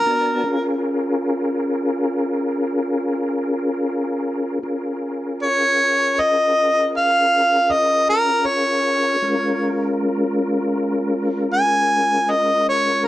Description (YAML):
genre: blues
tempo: 52 BPM (dotted quarters)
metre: 12/8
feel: straight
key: Bb minor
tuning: A4 = 440 Hz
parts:
  - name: warm harmonica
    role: melody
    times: 0.0-13.1 s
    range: Bb4 to Ab5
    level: -16 LUFS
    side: equal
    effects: overdrive
  - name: tonewheel organ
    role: sustained chords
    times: 0.0-13.1 s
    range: Ab3 to A5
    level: -21 LUFS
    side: equal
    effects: slow rotary speaker, chorus vibrato
room: moderate club ambience, RT60 0.5 s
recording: dark, warm production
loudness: -17 LUFS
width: side -15 dB against mid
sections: 0.0-13.1 A section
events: harmonica solo 0.0-13.1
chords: 0.0 Bbm7